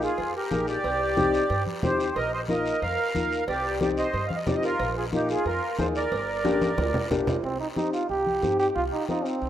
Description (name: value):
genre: latin, cumbia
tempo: 182 BPM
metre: 4/4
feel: straight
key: C minor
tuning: A4 = 440 Hz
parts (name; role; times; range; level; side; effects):
- accordion; melody; 0.0-7.1 s; Eb4 to F5; -26 LUFS; right 1 dB; light tremolo tuning
- dark upright piano; accompaniment; 0.0-9.3 s; Bb3 to Ab4; -29 LUFS; left 3 dB; none
- upright bass; bass; 0.0-9.5 s; G1 to G2; -34 LUFS; equal; none
- guiro; percussion; 0.0-9.5 s; none; -44 LUFS; left 4 dB; none
- cowbell and timbales; percussion; 0.2-7.3 s; none; -36 LUFS; right 4 dB; none
- congas; percussion; 0.5-9.3 s; none; -32 LUFS; left 1 dB; none
- bright trombone; second line; 7.4-9.5 s; C4 to G4; -26 LUFS; right 2 dB; none
room: wet plate reverb, RT60 3.2 s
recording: rough home demo mix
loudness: -23 LUFS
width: side -11 dB against mid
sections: 0.0-7.4 A section; 7.4-9.5 B section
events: drum fill 6.4-7.4; trombone solo 7.4-9.5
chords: 0.0 Bbsus4; 0.8 Cmadd9; 2.2 Bbsus4; 3.5 Cmadd9; 4.8 Bbsus4; 6.1 Gm; 7.4 Cm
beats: 0.18 0.51 | 0.84 1.17 1.50 1.83 | 2.16 2.49 2.82 3.15 | 3.48 3.81 4.14 4.47 | 4.80 5.13 5.46 5.79 | 6.12 6.45 6.78 7.11 | 7.44 7.77 8.10 8.43 | 8.76 9.09 9.42